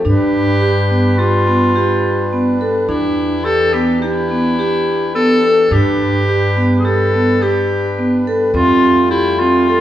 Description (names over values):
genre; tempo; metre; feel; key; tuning
contemporary instrumental, contemporary; 106 BPM; 5/4; straight; unclear; A4 = 445 Hz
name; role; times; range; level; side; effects
pedal harmonium; sustained chords; 0.0-9.8 s; E3 to B4; -21 LUFS; left 2 dB; none
vibraphone with medium mallets; arpeggios; 0.0-9.8 s; B3 to A4; -16 LUFS; right 1 dB; none
warm clarinet; second line; 0.1-9.8 s; E4 to A4; -16 LUFS; left 1 dB; none
upright bass; bass; 0.1-9.8 s; E2 to G2; -20 LUFS; equal; none
room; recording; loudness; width
wet recital hall reverb, RT60 1.4 s; heard from further back in the room; -12 LUFS; side -12 dB against mid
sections
0.0-9.8 A section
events
none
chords
0.1 G; 2.9 Em7; 5.7 G; 8.5 Fadd9